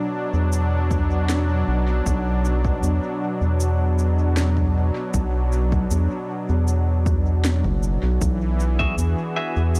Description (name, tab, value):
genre	ambient dub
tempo	78 BPM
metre	4/4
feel	straight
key	unclear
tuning	A4 = 441 Hz
part	warm analog pad	sustained chords	0.0-9.8 s	B2 to G#4	-28 LUFS	equal	chorus, tremolo
part	round analog bass	bass	0.3-9.8 s	F#1 to E2	-22 LUFS	equal	none
part	electronic cabasa and snare drum	drums	0.5-9.8 s	none	-32 LUFS	equal	overdrive, dub echo
part	electronic kick drum	drums	0.9-8.9 s	none	-29 LUFS	equal	overdrive
part	clean electric guitar	stabs	8.8-9.6 s	F#4 to E5	-29 LUFS	equal	dub echo
room	little or no reverb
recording	none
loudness	-21 LUFS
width	mono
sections	0.0-9.8 A section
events	none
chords	0.0 Eadd9/B